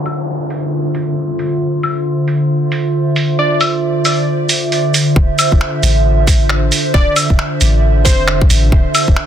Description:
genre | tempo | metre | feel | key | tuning
future garage | 135 BPM | 4/4 | swing 62% on 16ths | D minor | A4 = 440 Hz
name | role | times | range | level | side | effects
warbly tape-like pad | sustained chords | 0.0-9.3 s | D3 to E5 | -16 LUFS | right 1 dB | chorus, built-in reverb, vintage 12-bit sampler grit, sidechain pumping
downlifter | sound effects | 0.0-1.6 s | none | -27 LUFS | left 1 dB | none
lo-fi sampler-style drum kit | drums | 0.1-9.3 s | claves, finger snaps, hi-hat, shaker | -16 LUFS | equal | overdrive, soft clipping on snare
plucky unison lead | melody | 3.4-3.6, 6.9-8.4 s | C5 to D5 | -20 LUFS | equal | dub echo
soft 808-style bass | bass | 5.2-9.2 s | D1 to A1 | -14 LUFS | equal | tube saturation, sidechain pumping
electronic kick drum | drums | 5.2-9.1 s | none | -12 LUFS | equal | none
room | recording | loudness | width
digital ambience | dense, heavily limited modern master, low-pass filter | -11 LUFS | side -9 dB against mid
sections
0.0-5.2 A section; 5.2-9.3 B section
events
filter sweep 0.0-5.2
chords
0.0 Dm7

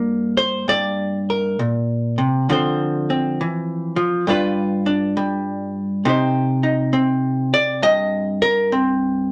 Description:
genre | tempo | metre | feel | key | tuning
solo jazz | 67 BPM | 4/4 | swing 66% on 8ths, rubato | C minor | A4 = 442 Hz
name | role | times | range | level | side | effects
hollow-body jazz guitar | solo | 0.0-9.3 s | G2 to Eb5 | -20 LUFS | equal | none
room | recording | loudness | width
moderate club reverb, RT60 0.6 s | none | -20 LUFS | mono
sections
0.0-9.3 A section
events
hollow-body jazz guitar solo 0.0-9.3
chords
0.0 Gm7; 2.5 Dm9; 4.3 G7; 6.1 Cm

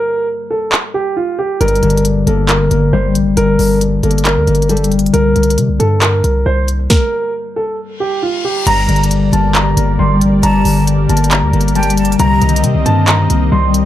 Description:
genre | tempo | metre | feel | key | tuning
hip hop, trap | 136 BPM | 4/4 | half-time | G minor | A4 = 440 Hz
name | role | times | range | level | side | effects
dark concert grand piano | melody | 0.0-13.7 s | F4 to C6 | -17 LUFS | right 1 dB | low-pass filter
concert harp | accompaniment | 0.0-13.9 s | G2 to Bb3 | -16 LUFS | left 4 dB | low-pass filter
trap drum kit | drums | 0.7-13.8 s | crash cymbal, handclaps, hi-hat, kick drum, snare drum | -17 LUFS | equal | none
hard-hitting 808-style bass | bass | 1.6-13.9 s | G1 to C3 | -15 LUFS | equal | none
reverse cymbal | sound effects | 8.0-8.7 s | none | -23 LUFS | left 4 dB | none
breathy jazz flute | second line | 8.7-12.6 s | G5 to Bb5 | -23 LUFS | right 6 dB | tape echo
warm analog pad | sustained chords | 8.7-13.9 s | G3 to Eb5 | -22 LUFS | right 3 dB | wide subtle chorus
room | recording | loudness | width
moderate plate reverb, RT60 1.0 s | lossy compression artefacts | -11 LUFS | side -12 dB against mid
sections
0.0-8.7 A section; 8.7-13.9 B section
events
break 0.0-1.6; stop 6.9-8.7; reverse cymbal 8.0-8.7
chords
0.0 N.C.; 1.6 Gm; 5.1 C5; 6.9 N.C.; 8.7 Gm; 12.2 Cm7

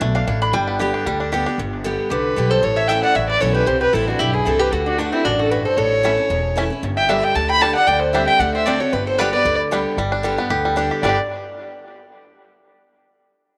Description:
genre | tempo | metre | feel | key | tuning
bluegrass | 229 BPM | 4/4 | swing 54% on 8ths | G major | A4 = 440 Hz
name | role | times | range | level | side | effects
bluegrass banjo | melody | 0.0-1.6, 6.0-11.2 s | G3 to G4 | -27 LUFS | equal | tape echo
picked steel-string acoustic guitar | accompaniment | 0.0-11.2 s | E2 to G4 | -26 LUFS | equal | none
upright bass | bass | 0.0-11.2 s | E1 to D2 | -27 LUFS | equal | none
lap resonator guitar | second line | 0.1-9.6 s | A3 to B5 | -26 LUFS | equal | none
dark fiddle | melody | 2.1-11.2 s | D4 to B5 | -21 LUFS | equal | none
room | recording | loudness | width
wet plate reverb, RT60 3.0 s | none | -18 LUFS | mono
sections
0.0-1.6 A section; 1.6-10.0 B section; 10.0-11.0 C section; 11.0-12.1 D section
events
resonator guitar played with a steel bar solo 0.0-1.6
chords
0.0 D5; 0.5 G; 2.6 A; 3.7 C; 4.7 D; 5.8 A; 6.8 G5; 7.9 D7sus4; 8.4 D7; 8.9 G

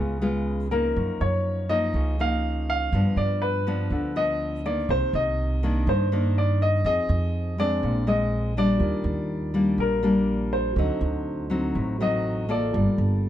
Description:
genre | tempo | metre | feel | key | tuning
bossa nova | 122 BPM | 4/4 | straight | unclear | A4 = 440 Hz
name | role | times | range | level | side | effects
warm concert grand piano | melody | 0.0-13.3 s | Bb4 to F5 | -27 LUFS | left 1 dB | none
nylon-string guitar | accompaniment | 0.0-13.3 s | Gb2 to A4 | -26 LUFS | left 2 dB | none
upright bass | bass | 0.0-13.3 s | G1 to G2 | -26 LUFS | right 1 dB | none
mellow tine electric piano | accompaniment | 8.8-13.3 s | F4 to A5 | -36 LUFS | right 7 dB | none
room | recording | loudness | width
light reverb | dark, warm production | -22 LUFS | side -11 dB against mid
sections
0.0-13.3 A section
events
none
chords
0.0 Db7; 1.0 Gb6; 2.9 G7; 4.9 Cm9; 6.8 Fm7; 7.8 Bb9; 8.8 Ebmaj7; 10.8 D7b9; 12.7 Gm9

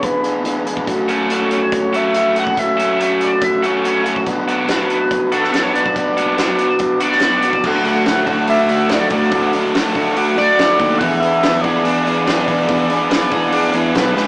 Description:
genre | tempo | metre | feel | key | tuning
indie rock | 142 BPM | 4/4 | straight | D lydian | A4 = 445 Hz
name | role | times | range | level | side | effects
sync lead | melody | 0.0-14.3 s | A4 to F#5 | -18 LUFS | equal | chorus
overdriven electric guitar | riff | 0.0-14.3 s | B2 to G#4 | -18 LUFS | equal | spring reverb
loose indie drum kit | drums | 0.0-14.3 s | crash cymbal, hi-hat, kick drum, snare drum | -23 LUFS | equal | none
scooped high-gain guitar | riff | 1.1-14.3 s | D3 to G#4 | -21 LUFS | right 1 dB | distortion
fuzz picked electric bass | bass | 7.6-14.3 s | B1 to E2 | -20 LUFS | equal | overdrive
room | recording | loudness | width
moderate small room reverb, RT60 0.5 s | rough rehearsal-room recording, warm saturation, small speaker sound | -13 LUFS | side -28 dB against mid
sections
0.0-7.6 A section; 7.6-14.3 B section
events
none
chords
0.0 E7; 0.9 F#m7; 4.3 Bm; 7.6 D; 11.0 E7

